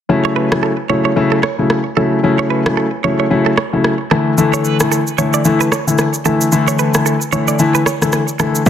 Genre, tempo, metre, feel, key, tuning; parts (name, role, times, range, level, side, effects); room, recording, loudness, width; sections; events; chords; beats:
afrobeats; 112 BPM; 4/4; swing 58% on 16ths; F# minor; A4 = 440 Hz
warm concert grand piano; accompaniment; 0.1-8.7 s; C#3 to E4; -14 LUFS; left 2 dB
direct-recorded clean electric guitar; riff; 0.2-8.5 s; A4 to D5; -20 LUFS; right 11 dB; tape echo
deep house drum kit; drums; 0.5-8.7 s; kick drum, rim click, shaker; -18 LUFS; right 1 dB; soft clipping on snare, soft clipping on kick
light reverb, digital ambience; dense, heavily limited modern master; -12 LUFS; side -9 dB against mid
0.1-8.7 A section
0.1 F#m7; 4.1 Dsus2
| 0.09 0.63 1.16 1.70 | 2.23 2.77 3.31 3.84 | 4.38 4.91 5.45 5.99 | 6.52 7.06 7.59 8.13 | 8.66